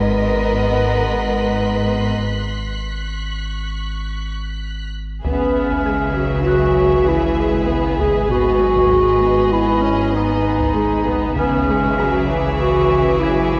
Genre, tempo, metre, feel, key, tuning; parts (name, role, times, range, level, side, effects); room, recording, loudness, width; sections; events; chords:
cinematic, suspense film score; 98 BPM; 5/4; straight; G# minor; A4 = 440 Hz
rich symphonic violin section; melody; 0.0-13.6 s; D#5 to E5; -32 LUFS; equal
rich chamber violin section; second line; 0.0-13.6 s; G#4 to B4; -27 LUFS; equal
warm chamber viola section; accompaniment; 0.0-13.6 s; E3 to C#4; -24 LUFS; equal
rich chamber cello section; bass; 0.0-13.6 s; G#2 to C#3; -27 LUFS; equal
warm studio double bass section; bass; 0.0-13.6 s; G#1 to C#2; -28 LUFS; equal
saturated sub bass; drone; 0.0-13.6 s; G#1; -29 LUFS; equal
concert harp; texture; 0.0-13.6 s; A#5 to A#6; -33 LUFS; equal
rich studio violin section; texture; 0.0-4.9, 11.4-13.6 s; B#5 to B6; -33 LUFS; equal
taiko ensemble; drums; 5.2-12.4 s; -30 LUFS; equal
mellow clarinet; second line; 5.3-13.6 s; C#4 to G#4; -20 LUFS; equal
moderate concert hall reverb, RT60 2.5 s; worn, warbling old tape, cassette tape, warbly pitch drift; -18 LUFS; mono
0.0-5.2 A section; 5.2-13.6 B section
break 2.2-5.2
0.0 G#madd9; 2.2 G#7#9; 5.2 C#m7/G#; 8.3 G#m7; 11.4 C#m7/G#